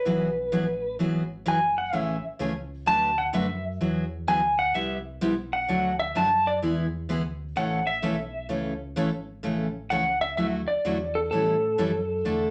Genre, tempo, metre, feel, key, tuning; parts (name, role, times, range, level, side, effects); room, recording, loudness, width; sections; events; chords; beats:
country, western swing; 128 BPM; 4/4; swing 66% on 8ths; A major; A4 = 440 Hz
clean lap steel guitar; melody; 0.0-12.5 s; A4 to A5; -27 LUFS; equal
picked steel-string acoustic guitar; accompaniment; 0.1-12.5 s; C3 to B4; -30 LUFS; equal
sub bass with octave; bass; 0.1-12.5 s; F#1 to A2; -40 LUFS; equal
wet studio reverb, RT60 0.6 s; -26 LUFS; mono
0.0-9.4 A section; 9.4-12.5 B section
electric slide guitar solo 0.0-9.4
0.1 Eadd9; 1.9 Amaj7; 2.9 D6; 3.8 Eadd9; 4.7 Cmaj7; 5.7 D; 6.6 E; 7.6 A; 10.4 Dadd9; 11.3 A7
| 0.05 0.52 0.99 1.46 | 1.93 2.40 2.87 3.34 | 3.81 4.28 4.75 5.22 | 5.68 6.16 6.62 7.09 | 7.56 8.03 8.50 8.97 | 9.44 9.91 10.38 10.85 | 11.31 11.78 12.25